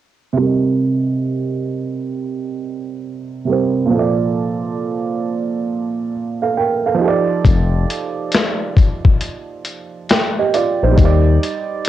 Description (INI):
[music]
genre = lo-fi hip hop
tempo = 68 BPM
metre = 4/4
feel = swing 65% on 16ths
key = C dorian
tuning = A4 = 440 Hz
[part]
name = dark upright piano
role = accompaniment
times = 0.3-11.9 s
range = Bb2 to G5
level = -18 LUFS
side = right 5 dB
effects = low-pass filter
[part]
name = smooth synth bass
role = bass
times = 7.4-11.4 s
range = F1 to Eb2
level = -14 LUFS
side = left 2 dB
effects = none
[part]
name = boom bap sampler-style drum kit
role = drums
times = 7.4-11.9 s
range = hi-hat, kick drum, snare drum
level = -14 LUFS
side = left 2 dB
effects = vintage 12-bit sampler grit, cassette tape
[sound]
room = light reverb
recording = home recording on cassette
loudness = -15 LUFS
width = side -12 dB against mid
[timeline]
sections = 0.4-11.9 A section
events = filter sweep on upright piano 0.4-11.9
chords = 0.4 Cm7; 3.9 Bbmaj7; 7.0 F13; 11.0 Ebmaj7